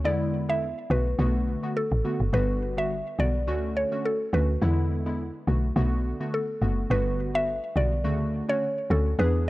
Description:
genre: afrobeats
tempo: 105 BPM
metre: 4/4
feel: swing 55% on 16ths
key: D major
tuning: A4 = 440 Hz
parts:
  - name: mallet-like synth pluck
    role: melody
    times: 0.0-9.3 s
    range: A4 to E5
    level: -29 LUFS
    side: equal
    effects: chorus
  - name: glassy digital keys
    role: accompaniment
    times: 0.0-9.5 s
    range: C#3 to G#4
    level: -29 LUFS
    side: equal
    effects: chorus
  - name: woody log drum bass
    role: bass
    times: 0.0-9.5 s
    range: F#1 to E2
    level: -26 LUFS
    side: equal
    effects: none
room: little or no reverb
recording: dry, gritty hardware recording, cassette tape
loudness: -24 LUFS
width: side -18 dB against mid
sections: 0.0-9.5 A section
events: none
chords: 0.0 E7; 0.9 Bm7; 2.3 Gmaj7; 3.5 Dmaj7; 4.6 E7; 5.5 Bm7; 6.9 Gmaj7; 8.0 Dmaj7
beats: | 0.04 0.62 1.19 1.76 | 2.33 2.90 3.47 4.04 | 4.62 5.19 5.76 6.33 | 6.90 7.47 8.04 8.62 | 9.19

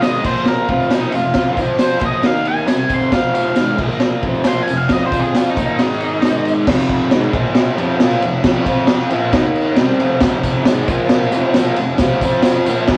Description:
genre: garage rock duo or trio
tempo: 135 BPM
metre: 4/4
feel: straight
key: unclear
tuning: A4 = 441 Hz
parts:
  - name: octave-fuzz lead guitar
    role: melody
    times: 0.0-6.5 s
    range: Eb4 to C6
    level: -22 LUFS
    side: equal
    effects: distortion
  - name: thick fuzz guitar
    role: riff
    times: 0.0-13.0 s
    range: F2 to F4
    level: -20 LUFS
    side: equal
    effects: distortion
  - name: raw garage drum kit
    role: drums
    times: 0.0-13.0 s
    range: crash cymbal, kick drum, ride cymbal, snare drum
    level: -19 LUFS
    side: equal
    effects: vintage 12-bit sampler grit
  - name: tambourine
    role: percussion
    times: 0.0-6.6, 10.2-13.0 s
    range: none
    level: -40 LUFS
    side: equal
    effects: none
room: moderate stone room reverb, RT60 1.0 s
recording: rough rehearsal-room recording, cassette tape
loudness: -16 LUFS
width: mono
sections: 0.0-6.7 A section; 6.7-13.0 B section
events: lead electric guitar solo 0.0-6.7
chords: 0.3 Bb5; 0.7 F5; 2.3 Eb5; 2.7 F5; 3.8 Bb5; 4.2 F5; 5.8 Ab5; 6.7 F5; 7.3 Bb5; 7.8 F5; 9.3 Eb5; 9.8 F5; 10.9 Bb5; 11.3 F5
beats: 0.04 0.48 0.93 | 1.37 1.81 2.25 2.69 | 3.13 3.58 4.02 4.46 | 4.91 5.35 5.79 6.23 | 6.68 7.12 7.56 8.01 | 8.45 8.89 9.34 9.78 | 10.22 10.67 11.11 11.56 | 12.00 12.45 12.89

